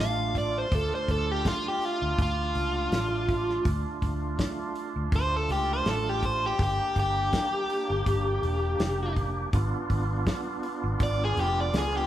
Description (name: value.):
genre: straight-eighth soul blues.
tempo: 82 BPM.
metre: 4/4.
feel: swing 56% on 16ths.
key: D harmonic minor.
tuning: A4 = 439 Hz.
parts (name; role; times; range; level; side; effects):
biting overdriven guitar; melody; 0.0-12.1 s; F4 to F5; -28 LUFS; left 1 dB; spring reverb.
bright tonewheel organ; accompaniment; 0.0-12.1 s; A3 to G4; -32 LUFS; right 4 dB; slow rotary speaker.
vintage muted fingered electric bass; bass; 0.0-12.1 s; E1 to D2; -30 LUFS; equal; none.
warm soul drum kit; drums; 0.4-11.9 s; hi-hat, kick drum, snare drum; -30 LUFS; equal; none.
room: moderate large studio reverb, RT60 1.2 s.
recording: band playing live in one room, lossy compression artefacts.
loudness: -25 LUFS.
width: side -12 dB against mid.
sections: 0.0-12.1 A section.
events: overdriven electric guitar solo 0.0-12.1.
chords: 0.0 Dm; 6.6 Gm; 9.5 G#dim7.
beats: | 0.72 1.45 2.19 2.92 | 3.66 4.39 5.13 5.86 | 6.60 7.33 8.07 8.80 | 9.54 10.27 11.01 11.74.